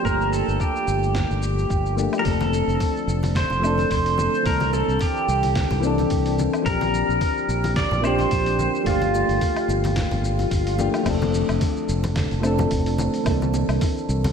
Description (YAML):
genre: sunset chillout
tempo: 109 BPM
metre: 4/4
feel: swing 56% on 16ths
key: F major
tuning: A4 = 441 Hz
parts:
  - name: pedal steel guitar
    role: melody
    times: 0.0-10.5 s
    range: F4 to D5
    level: -24 LUFS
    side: right 1 dB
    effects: analog delay
  - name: soft electric-piano-like synth keys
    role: accompaniment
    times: 0.0-14.3 s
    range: E3 to A4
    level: -24 LUFS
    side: moving between left 7 dB and right 4 dB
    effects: chorus, auto-pan, diffuse ambient delay
  - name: fingered electric bass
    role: bass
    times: 0.0-14.3 s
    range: F1 to C2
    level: -24 LUFS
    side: equal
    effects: none
  - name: dusty soul sampler-style drum kit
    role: drums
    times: 0.1-14.3 s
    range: crash cymbal, hi-hat, shaker, snare drum, woodblock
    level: -33 LUFS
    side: equal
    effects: none
  - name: electronic kick drum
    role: drums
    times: 0.1-13.9 s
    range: none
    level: -26 LUFS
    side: equal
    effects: none
  - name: congas and bongos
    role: percussion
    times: 2.4-14.3 s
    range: none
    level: -32 LUFS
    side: left 3 dB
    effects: none
  - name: swell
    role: sound effects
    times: 10.2-11.1 s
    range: none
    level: -30 LUFS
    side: left 4 dB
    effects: none
room: wet lush hall reverb, RT60 1.7 s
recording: dreamy mix soaked in reverb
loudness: -19 LUFS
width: side -6 dB against mid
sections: 0.0-11.1 A section; 11.1-14.3 B section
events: swell 10.2-11.1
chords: 0.1 Gm9; 2.3 F6; 4.5 C13; 6.7 Bb69; 8.9 Gm9; 11.1 F6; 13.3 C13